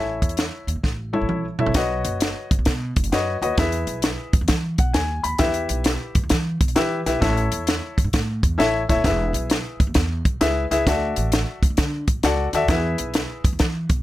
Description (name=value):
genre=uptempo 1960s-style soul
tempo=132 BPM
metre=4/4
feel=swing 66% on 8ths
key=unclear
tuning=A4 = 440 Hz
part: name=warm grand piano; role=accompaniment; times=0.0-13.5 s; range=E4 to B5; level=-23 LUFS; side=left 2 dB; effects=none
part: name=upright bass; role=bass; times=0.0-14.0 s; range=D#1 to E3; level=-26 LUFS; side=right 1 dB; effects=none
part: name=compact cocktail drum kit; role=drums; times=0.2-14.0 s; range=hi-hat, kick drum, snare drum, toms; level=-21 LUFS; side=equal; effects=none
room=little or no reverb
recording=none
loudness=-19 LUFS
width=side -15 dB against mid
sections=0.0-1.8 A section; 1.8-14.0 B section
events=drum fill 0.8-1.8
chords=0.0 A; 1.8 Badd9; 3.6 E; 5.4 Em; 7.2 A; 9.0 E; 10.9 Dadd9; 12.7 E